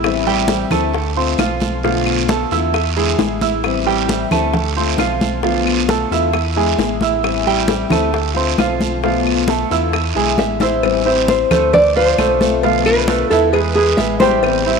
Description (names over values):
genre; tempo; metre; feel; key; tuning
latin, Cuban son and guajira; 133 BPM; 4/4; straight; A minor; A4 = 438 Hz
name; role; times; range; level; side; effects
fingerpicked steel-string acoustic guitar; accompaniment; 0.0-14.8 s; B2 to F4; -21 LUFS; left 15 dB; none
clear baby grand piano; arpeggios; 0.0-14.8 s; E3 to E6; -19 LUFS; right 10 dB; none
sub bass with octave; bass; 0.0-14.8 s; A1 to E2; -23 LUFS; equal; none
bongos and cowbell; percussion; 0.0-14.7 s; none; -25 LUFS; left 13 dB; none
claves; percussion; 0.0-14.7 s; none; -31 LUFS; left 13 dB; none
congas; percussion; 0.0-14.8 s; none; -21 LUFS; equal; none
guiro; percussion; 0.0-14.8 s; none; -26 LUFS; right 12 dB; none
nylon-string guitar; melody; 10.4-14.8 s; G#4 to E5; -15 LUFS; left 1 dB; none
room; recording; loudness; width
moderate plate reverb, RT60 3.9 s; 1960s-style stereo with parts hard left and right; -14 LUFS; side -5 dB against mid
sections
0.0-10.8 A section; 10.8-14.8 B section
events
drum fill 10.4-10.8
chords
0.0 Am7; 0.9 Dm7; 1.8 Bm7b5; 2.7 E7; 3.6 Am7; 4.5 Dm7; 5.4 Bm7b5; 6.3 E7; 7.2 Am7; 8.1 Dm7; 9.0 Bm7b5; 9.9 E7; 10.8 Am7; 11.7 Dm7; 12.6 Bm7b5; 13.5 E7